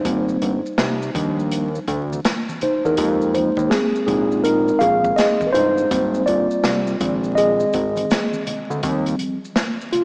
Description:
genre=hip hop, jazz-hop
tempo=82 BPM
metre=4/4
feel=swing 64% on 16ths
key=Eb major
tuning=A4 = 438 Hz
part: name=mellow tine electric piano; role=accompaniment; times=0.0-10.0 s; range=Eb3 to F5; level=-21 LUFS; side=equal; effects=none
part: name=fat analog bass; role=bass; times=0.1-9.2 s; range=G1 to F2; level=-26 LUFS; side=equal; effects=none
part: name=open jazz drum kit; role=drums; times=0.1-10.0 s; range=hi-hat, kick drum, snare drum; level=-27 LUFS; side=equal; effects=none
part: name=maracas and congas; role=percussion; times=0.1-10.0 s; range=none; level=-40 LUFS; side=equal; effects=none
room=wet church reverb, RT60 3.9 s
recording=dreamy mix soaked in reverb, vinyl crackle, small speaker sound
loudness=-20 LUFS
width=mono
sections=0.0-8.8 A section; 8.8-10.0 B section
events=tine electric piano solo 0.0-8.8, 8.8-10.0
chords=0.1 Abmaj9; 1.1 Ebmaj7; 3.0 Fm11; 4.1 Bb7sus4; 5.9 Abmaj9; 7.0 Bb7sus4; 8.8 Eb69

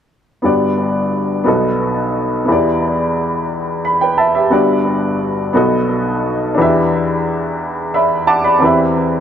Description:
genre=gospel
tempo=59 BPM (dotted quarters)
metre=6/8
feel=straight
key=G major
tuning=A4 = 441 Hz
part: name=clear upright piano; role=solo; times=0.4-9.2 s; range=G1 to D6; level=-13 LUFS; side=equal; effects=analog delay
room=moderate spring reverb, RT60 1.3 s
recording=echo-heavy mix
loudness=-13 LUFS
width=side -8 dB against mid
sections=0.4-4.5 A section; 4.5-9.2 B section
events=upright piano fill 3.5-4.5, 7.6-8.6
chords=0.4 Gmaj7; 1.5 B7; 2.5 Em7; 4.5 Gmaj7; 5.5 B7; 6.6 Em7; 8.6 Cmaj7/E

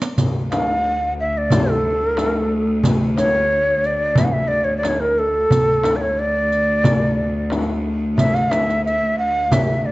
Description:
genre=Arabic maqam ensemble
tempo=90 BPM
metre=4/4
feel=straight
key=D maqam suznak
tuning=A4 = 440 Hz
part: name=darbuka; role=percussion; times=0.0-9.7 s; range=none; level=-20 LUFS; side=right 1 dB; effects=none
part: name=riq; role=percussion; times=0.0-9.7 s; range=none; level=-29 LUFS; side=right 2 dB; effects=none
part: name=bright studio cello section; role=drone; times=0.2-9.9 s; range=D2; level=-23 LUFS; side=equal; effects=none
part: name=frame drum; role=percussion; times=0.2-9.7 s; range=none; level=-24 LUFS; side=left 2 dB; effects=none
part: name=breathy mellow ney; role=melody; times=0.5-9.9 s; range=A4 to F#5-47c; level=-18 LUFS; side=equal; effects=none
room=moderate recital hall reverb, RT60 1.4 s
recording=worn, warbling old tape, cassette tape, warbly pitch drift, nothing above 7.9 kHz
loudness=-16 LUFS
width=side -19 dB against mid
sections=0.2-9.9 A section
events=drum fill 0.0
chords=none

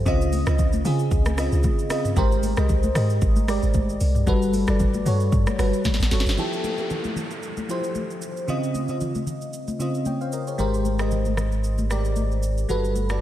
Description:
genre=amapiano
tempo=114 BPM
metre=4/4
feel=swing 55% on 16ths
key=unclear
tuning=A4 = 440 Hz
part: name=bell-like FM electric piano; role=accompaniment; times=0.0-13.2 s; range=Db3 to G5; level=-25 LUFS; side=equal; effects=chorus, phaser
part: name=deep log drum bass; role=bass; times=0.0-6.4 s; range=G1 to Db3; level=-22 LUFS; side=equal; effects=none
part: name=afro-pop drum kit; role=drums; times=0.1-13.2 s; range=hi-hat, kick drum, rim click, shaker, snare drum, toms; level=-26 LUFS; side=equal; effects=none
part: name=congas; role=percussion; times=0.1-13.1 s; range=none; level=-33 LUFS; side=left 2 dB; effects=none
part: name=downlifter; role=sound effects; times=6.4-10.6 s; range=none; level=-36 LUFS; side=equal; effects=none
part: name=round analog bass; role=bass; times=10.6-13.2 s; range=G1 to Ab1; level=-24 LUFS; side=equal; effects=none
room=moderate lush hall reverb, RT60 2.4 s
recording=dreamy mix soaked in reverb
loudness=-20 LUFS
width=side -12 dB against mid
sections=0.0-6.4 A section; 6.4-13.2 B section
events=drop 0.0-6.4; drum fill 5.9-6.4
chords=0.1 Dbmaj9; 2.2 Abmaj9; 4.3 Gmaj9; 6.4 Fmaj9; 8.5 Dbmaj9; 10.6 Abmaj9; 12.7 Gmaj9

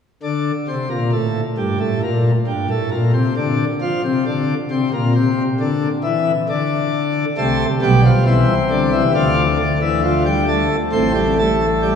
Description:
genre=classical, baroque-style 4-part fugue for pipe organ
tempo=68 BPM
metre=4/4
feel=straight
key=D minor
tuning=A4 = 441 Hz
part: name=pipe organ, plenum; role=solo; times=0.2-12.0 s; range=A1 to C4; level=-15 LUFS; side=left 1 dB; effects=none
room=wet church reverb, RT60 3.3 s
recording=studio ambience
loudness=-15 LUFS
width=side -7 dB against mid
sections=0.2-12.0 A section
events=none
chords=0.2 N.C.; 7.4 Am; 9.1 Dm; 10.9 Am

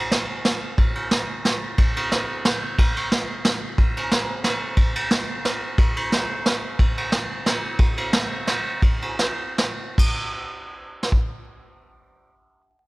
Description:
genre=musette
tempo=144-182 BPM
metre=3/4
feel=swing 54% on 8ths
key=none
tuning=none
part: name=vintage brush drum kit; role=drums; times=0.1-11.2 s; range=crash cymbal, kick drum, ride cymbal, snare drum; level=-20 LUFS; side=equal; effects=none
room=little or no reverb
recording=none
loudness=-20 LUFS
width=side -22 dB against mid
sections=0.0-10.0 A section; 10.0-12.5 B section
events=slowing down 7.8-10.0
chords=none

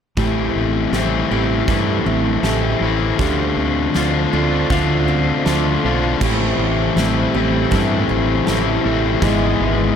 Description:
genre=post-rock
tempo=80 BPM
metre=4/4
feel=straight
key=A minor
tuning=A4 = 438 Hz
part: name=dark analog pad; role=sustained chords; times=1.3-10.0 s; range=F4 to B5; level=-29 LUFS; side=right 7 dB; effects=chorus, phaser
part: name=clean electric guitar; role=arpeggios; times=0.2-10.0 s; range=G#2 to A4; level=-25 LUFS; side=right 2 dB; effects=warbly pitch drift, analog delay
part: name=qanun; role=arpeggios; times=0.2-10.0 s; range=D4 to E5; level=-27 LUFS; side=right 13 dB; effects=analog delay
part: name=distorted electric guitar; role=riff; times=0.2-10.0 s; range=G#2 to F4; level=-18 LUFS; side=left 6 dB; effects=distortion
part: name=growling fingered electric bass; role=bass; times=0.2-9.9 s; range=G#1 to G2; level=-21 LUFS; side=right 2 dB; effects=overdrive
part: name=huge arena drum kit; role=drums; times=0.2-9.4 s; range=crash cymbal, kick drum, snare drum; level=-26 LUFS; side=right 1 dB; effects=none
room=light reverb, small room reverb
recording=none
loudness=-15 LUFS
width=side -8 dB against mid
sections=0.2-10.0 A section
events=build-up 0.2-10.0; drum fill 0.2-10.0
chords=0.2 Am7; 3.2 Dm7; 6.2 Am7; 9.2 E/G#

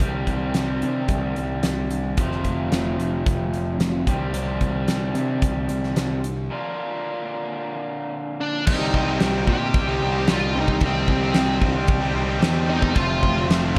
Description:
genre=classic rock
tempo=111 BPM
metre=4/4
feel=straight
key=C dorian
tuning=A4 = 440 Hz
part: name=raw garage guitar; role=riff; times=0.0-13.8 s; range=F2 to G4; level=-28 LUFS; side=equal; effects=overdrive
part: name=fuzz picked electric bass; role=bass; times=0.0-13.8 s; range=F1 to C3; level=-28 LUFS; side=equal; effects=overdrive
part: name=big rock drum kit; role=drums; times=0.0-13.8 s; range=crash cymbal, hi-hat, kick drum, snare drum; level=-26 LUFS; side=equal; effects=none
part: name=fuzz lead guitar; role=melody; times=8.4-13.5 s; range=C4 to G4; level=-29 LUFS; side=equal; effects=wah, distortion
part: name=tonewheel organ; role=sustained chords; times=8.7-13.8 s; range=C4 to Eb5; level=-38 LUFS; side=equal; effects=none
part: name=distorted electric guitar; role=riff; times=8.7-13.8 s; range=C3 to F4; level=-32 LUFS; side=equal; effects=overdrive
room=little or no reverb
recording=none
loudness=-23 LUFS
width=mono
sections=0.0-8.7 A section; 8.7-13.8 B section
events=break 6.5-8.7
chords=0.0 Cm; 2.2 F; 4.1 Cm; 6.5 Bb; 8.7 Cm; 13.0 F

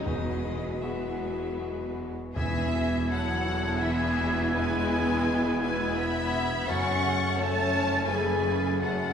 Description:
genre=cinematic, emotional film score for orchestra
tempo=78-86 BPM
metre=3/4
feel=rubato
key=E major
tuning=A4 = 440 Hz
part: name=rich studio violin section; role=melody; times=0.0-9.1 s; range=B4 to C#6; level=-34 LUFS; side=left 1 dB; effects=none
part: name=warm violin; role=melody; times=0.0-2.0 s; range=D#5 to E5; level=-44 LUFS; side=left 4 dB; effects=none
part: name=dark clarinet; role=second line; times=0.0-9.1 s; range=B3 to E4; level=-36 LUFS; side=equal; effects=none
part: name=mellow hollow concert flute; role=second line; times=0.0-9.1 s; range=F#4 to A6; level=-35 LUFS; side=left 1 dB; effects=none
part: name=rich studio violin section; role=second line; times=0.0-9.1 s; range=B3 to F#5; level=-36 LUFS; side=equal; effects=none
part: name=rich studio viola section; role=accompaniment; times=0.0-9.1 s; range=F#3 to E4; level=-36 LUFS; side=right 1 dB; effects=none
part: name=warm concert grand piano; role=accompaniment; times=0.0-9.1 s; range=E2 to F#4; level=-34 LUFS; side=left 2 dB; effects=none
part: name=mellow French horn section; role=sustained chords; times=0.0-9.1 s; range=E3 to G#4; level=-34 LUFS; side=left 3 dB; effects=none
part: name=rich studio cello section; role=bass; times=0.0-9.1 s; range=E2 to F#2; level=-35 LUFS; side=right 1 dB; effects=none
part: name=rich studio double bass section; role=bass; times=0.0-9.1 s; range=E1 to F#1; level=-35 LUFS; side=right 2 dB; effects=none
part: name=timpani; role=percussion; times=0.1-3.4 s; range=E2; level=-34 LUFS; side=right 1 dB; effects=none
room=wet concert hall reverb, RT60 1.8 s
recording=recorded in a church or concert hall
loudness=-25 LUFS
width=side -7 dB against mid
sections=0.0-2.4 A section; 2.4-9.1 B section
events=none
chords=0.1 Eadd9; 6.7 F#m

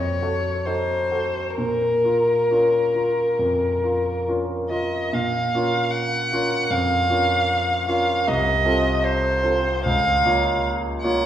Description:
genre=classical, romantic duo for violin and grand piano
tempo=64-78 BPM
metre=4/4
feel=rubato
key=Bb minor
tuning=A4 = 445 Hz
part: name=warm violin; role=melody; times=0.0-11.3 s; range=Bb4 to Gb5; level=-21 LUFS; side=equal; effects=none
part: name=clear concert grand piano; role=accompaniment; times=0.0-11.3 s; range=C2 to Db5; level=-23 LUFS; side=equal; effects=none
room=wet recital hall reverb, RT60 1.6 s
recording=heard from further back in the room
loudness=-19 LUFS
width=side -10 dB against mid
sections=0.0-5.1 A section; 5.1-11.3 B section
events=none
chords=0.0 F7b9; 1.6 Bbm; 8.3 F7/C; 9.9 Bbm/Db

